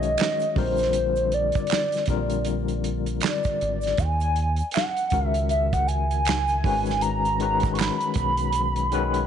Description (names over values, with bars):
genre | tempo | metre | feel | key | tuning
R&B, neo-soul | 79 BPM | 4/4 | swing 60% on 16ths | unclear | A4 = 441 Hz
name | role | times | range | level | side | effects
hollow square lead | melody | 0.0-9.2 s | B#4 to C#6 | -25 LUFS | equal | chorus, tape echo
barky tine electric piano | accompaniment | 0.0-9.3 s | D3 to C#5 | -29 LUFS | left 11 dB | overdrive, fast tremolo
deep dub fingered electric bass | bass | 0.0-9.3 s | G#1 to D#2 | -27 LUFS | right 1 dB | tube saturation
warm soul drum kit | drums | 0.0-9.3 s | handclaps, hi-hat, kick drum, snare drum | -28 LUFS | right 4 dB | none
tube shaker and finger snaps | percussion | 0.0-9.3 s | none | -37 LUFS | right 16 dB | none
room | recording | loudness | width
light reverb | 1960s-style stereo with parts hard left and right, nothing above 10.6 kHz | -21 LUFS | side -8 dB against mid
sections
0.0-9.3 A section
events
none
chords
0.0 C#sus2; 0.6 A#; 4.0 D#m7; 6.6 G#m9